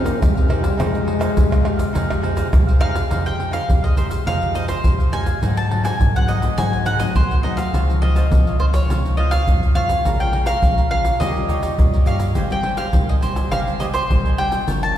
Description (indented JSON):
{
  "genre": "samba and choro",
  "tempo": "104 BPM",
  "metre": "4/4",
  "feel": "straight",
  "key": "F minor",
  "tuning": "A4 = 439 Hz",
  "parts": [
    { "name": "breathy trombone", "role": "second line", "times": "0.0-2.5 s", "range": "C3 to Bb3", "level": "-24 LUFS", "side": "left 3 dB", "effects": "none" },
    { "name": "cavaquinho", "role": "accompaniment", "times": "0.0-15.0 s", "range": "Eb4 to Bb5", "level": "-29 LUFS", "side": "right 3 dB", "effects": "none" },
    { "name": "nylon-string guitar", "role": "accompaniment", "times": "0.0-15.0 s", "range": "G2 to G4", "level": "-28 LUFS", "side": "left 4 dB", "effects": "none" },
    { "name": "rubbery square bass", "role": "bass", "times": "0.0-15.0 s", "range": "G1 to Ab2", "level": "-22 LUFS", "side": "equal", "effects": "none" },
    { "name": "egg shaker, surdo, pandeiro and tamborim", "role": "percussion", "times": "0.1-15.0 s", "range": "none", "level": "-19 LUFS", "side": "equal", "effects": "none" },
    { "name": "mandolin", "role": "melody", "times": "2.8-15.0 s", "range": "C5 to A5", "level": "-23 LUFS", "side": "equal", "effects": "none" }
  ],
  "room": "wet concert hall reverb, RT60 2.0 s",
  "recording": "recorded in a church or concert hall",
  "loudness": "-16 LUFS",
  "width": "side -11 dB against mid",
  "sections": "0.0-3.1 A section; 3.1-15.0 B section",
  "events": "trombone solo 0.0-3.1",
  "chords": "0.0 Fm9; 5.4 Ab7b9; 7.7 Dbmaj9; 10.0 Bbm7; 11.2 Eb9; 12.4 Abmaj7",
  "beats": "0.22 | 0.80 1.38 1.95 2.53 | 3.11 3.69 4.27 4.84 | 5.42 6.00 6.58 7.16 | 7.74 8.31 8.89 9.47 | 10.05 10.63 11.21 11.79 | 12.36 12.94 13.52 14.10 | 14.68"
}